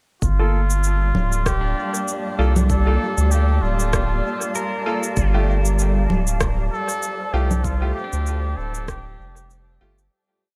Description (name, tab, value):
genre	ambient dub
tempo	97 BPM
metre	4/4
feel	swing 56% on 16ths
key	G minor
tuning	A4 = 435 Hz
part	trumpet with cup mute	melody	0.2-9.5 s	F4 to A4	-31 LUFS	equal	dub echo
part	granular cloud pad	sustained chords	1.0-10.1 s	G3 to A5	-32 LUFS	equal	built-in reverb
part	round analog bass	bass	0.2-10.1 s	D1 to D2	-22 LUFS	equal	none
part	electronic cabasa, congas and rim click	drums	0.2-10.1 s	none	-29 LUFS	equal	dub echo
part	electronic kick drum	drums	0.2-9.0 s	none	-27 LUFS	equal	none
part	wind-like tuned noise texture	texture	1.0-10.1 s	D5	-37 LUFS	equal	built-in reverb
part	clear upright piano	stabs	0.4-9.9 s	A3 to A4	-32 LUFS	equal	low-pass filter, dub echo
part	pedal steel guitar	arpeggios	1.6-10.6 s	D4 to Bb4	-37 LUFS	equal	dub echo
room	light reverb, digital ambience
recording	none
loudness	-21 LUFS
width	mono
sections	0.2-10.1 groove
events	fade-out 6.8-10.1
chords	0.2 Gm9